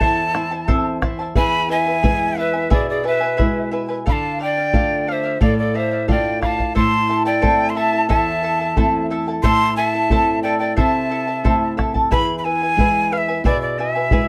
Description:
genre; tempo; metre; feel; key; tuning
andean folk, Andean ensemble; 89 BPM; 2/4; straight; unclear; A4 = 440 Hz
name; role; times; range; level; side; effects
breathy bright quena; melody; 0.0-14.3 s; D5 to C6; -23 LUFS; equal; none
charango; accompaniment; 0.0-14.3 s; E4 to A5; -25 LUFS; equal; none
flamenco guitar; accompaniment; 0.0-14.3 s; E2 to F4; -26 LUFS; equal; none
bombo; percussion; 0.0-14.3 s; none; -22 LUFS; equal; none
breathy pan flute; second line; 1.4-11.7 s; G#4 to A5; -26 LUFS; equal; none
room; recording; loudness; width
light reverb; close, detailed microphones; -18 LUFS; mono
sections
0.0-1.4 A section; 1.4-12.1 B section; 12.1-14.3 B section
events
none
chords
0.0 Am; 1.4 E; 4.1 Dm; 6.8 Am; 12.1 E

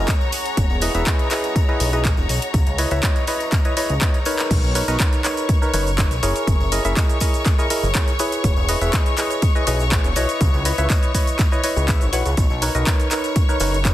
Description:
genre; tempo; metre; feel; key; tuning
piano house; 122 BPM; 4/4; straight; unclear; A4 = 440 Hz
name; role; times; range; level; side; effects
bright studio string section; sustained chords; 0.0-13.9 s; C#5 to C#6; -28 LUFS; left 4 dB; sidechain pumping
percussive organ stab; riff; 0.0-13.9 s; D#4 to F#5; -23 LUFS; equal; chorus, sidechain pumping, digital delay
fat analog bass; bass; 0.0-13.9 s; E1 to C#2; -22 LUFS; equal; sidechain pumping
deep dark ambient pad; texture; 0.0-4.5 s; G#4 to A#5; -33 LUFS; equal; chorus, built-in reverb, sidechain pumping
electronic kick drum; drums; 0.1-13.9 s; none; -18 LUFS; equal; studio reverb
house drum kit; drums; 0.1-13.9 s; crash cymbal, handclaps, hi-hat, shaker; -25 LUFS; equal; studio reverb
tambourine; percussion; 0.1-13.9 s; none; -35 LUFS; left 2 dB; none
room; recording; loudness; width
digital ambience; dense, heavily limited modern master; -17 LUFS; side -14 dB against mid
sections
0.0-4.5 A section; 4.5-13.9 B section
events
drum fill 4.0-4.5; band accent 4.4; drop 4.5-13.9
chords
0.0 F#13; 0.6 Emaj7; 2.5 C#m9; 4.5 F#13; 8.4 Emaj7; 10.4 C#m9; 12.4 F#6

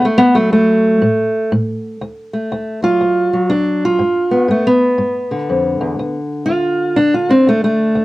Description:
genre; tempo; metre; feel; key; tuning
acoustic country blues, solo or duo; 121 BPM; 4/4; swing 63% on 8ths; unclear; A4 = 440 Hz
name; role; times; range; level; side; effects
fingerpicked steel-string acoustic guitar; solo; 0.0-8.0 s; D2 to F4; -12 LUFS; equal; none
room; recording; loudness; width
light reverb; worn, warbling old tape, cassette tape, warbly pitch drift; -12 LUFS; side -18 dB against mid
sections
0.0-2.0 A section; 2.0-8.0 A section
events
steel-string acoustic guitar solo 0.0-2.0, 2.0-8.0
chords
0.0 D; 1.0 N.C.; 2.0 D; 4.0 G7; 6.0 D5

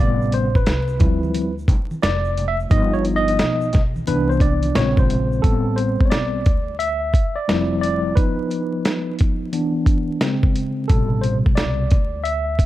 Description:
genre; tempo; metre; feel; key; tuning
hip hop, jazz-hop; 88 BPM; 4/4; swing 65% on 16ths; A minor; A4 = 440 Hz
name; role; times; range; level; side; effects
tine electric piano; accompaniment; 0.0-12.7 s; B2 to E5; -21 LUFS; equal; medium stereo tremolo
upright bass; bass; 0.0-12.6 s; F1 to D2; -23 LUFS; equal; none
egg shaker and congas; percussion; 0.2-5.4 s; none; -31 LUFS; right 1 dB; none
dusty soul sampler-style drum kit; drums; 0.3-12.7 s; hi-hat, kick drum, snare drum; -18 LUFS; equal; none
room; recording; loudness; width
small room ambience; dark, warm production, vinyl crackle; -17 LUFS; side -15 dB against mid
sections
0.0-5.4 A section; 5.4-12.7 B section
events
tine electric piano solo 0.0-5.4, 5.4-12.7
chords
0.0 Am9; 1.0 Dm11; 2.7 Gaug7; 4.1 Cmaj9; 4.8 Bbm9; 5.4 Am9; 6.5 Dm11; 8.2 B; 9.5 Bmadd11/E; 10.2 G#add11/C#; 10.9 Am9; 11.9 Dsus2

